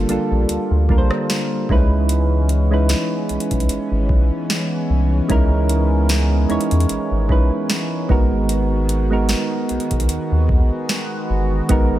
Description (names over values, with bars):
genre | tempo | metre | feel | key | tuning
contemporary R&B | 75 BPM | 4/4 | swing 54% on 16ths | unclear | A4 = 443 Hz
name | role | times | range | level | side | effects
soft electric-piano-like synth keys | accompaniment | 0.0-12.0 s | G3 to C#5 | -21 LUFS | right 2 dB | chorus
chorused pulse-width pad | sustained chords | 0.0-12.0 s | D3 to F#4 | -26 LUFS | left 1 dB | none
round analog bass | bass | 0.0-12.0 s | G1 to E2 | -18 LUFS | equal | none
booming analog drum machine | drums | 0.1-11.9 s | hi-hat, kick drum, rim click, snare drum | -19 LUFS | equal | none
room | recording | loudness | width
little or no reverb | none | -16 LUFS | side -14 dB against mid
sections
0.0-12.0 A section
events
none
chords
0.0 Gm7; 1.7 C#m7; 8.1 G#m7